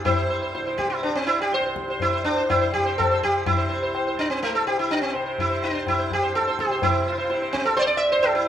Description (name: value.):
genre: indian classical, Hindustani.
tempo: 125 BPM.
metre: 7/4.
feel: straight.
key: C raga bhupali.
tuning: A4 = 440 Hz.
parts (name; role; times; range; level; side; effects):
sitar; melody; 0.0-8.5 s; A3 to E5; -21 LUFS; right 1 dB; none.
tanpura; drone; 0.0-8.5 s; C2 to C3; -34 LUFS; left 2 dB; none.
tabla; percussion; 0.1-8.4 s; none; -28 LUFS; left 4 dB; none.
room: moderate recital hall reverb, RT60 1.6 s.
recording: minimal, uncompressed stereo recording.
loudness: -20 LUFS.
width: side -10 dB against mid.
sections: 0.1-8.5 A section.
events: speeding up 0.0-8.5.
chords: none.